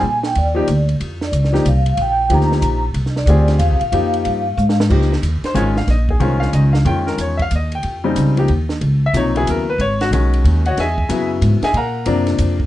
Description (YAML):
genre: modal jazz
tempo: 184 BPM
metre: 3/4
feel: swing 64% on 8ths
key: F dorian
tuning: A4 = 440 Hz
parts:
  - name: vibraphone with soft mallets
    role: melody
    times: 0.0-4.7 s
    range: D5 to Bb5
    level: -20 LUFS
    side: equal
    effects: none
  - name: upright bass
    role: bass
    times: 0.0-12.7 s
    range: Ab1 to Bb2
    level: -16 LUFS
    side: equal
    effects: none
  - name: compact cocktail drum kit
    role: drums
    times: 0.2-12.7 s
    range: crash cymbal, hi-hat, kick drum, ride cymbal, snare drum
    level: -26 LUFS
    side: right 2 dB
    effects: none
  - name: clear baby grand piano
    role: accompaniment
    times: 0.5-12.6 s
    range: C3 to Bb5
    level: -19 LUFS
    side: left 2 dB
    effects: none
room: light reverb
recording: dark, warm production, nothing above 10.5 kHz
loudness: -14 LUFS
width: side -14 dB against mid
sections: 0.0-4.9 A section; 4.9-12.7 B section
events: drum fill 4.6-4.9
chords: 0.0 F13sus4; 4.9 Bbm11; 8.8 Dbm11; 11.7 Bb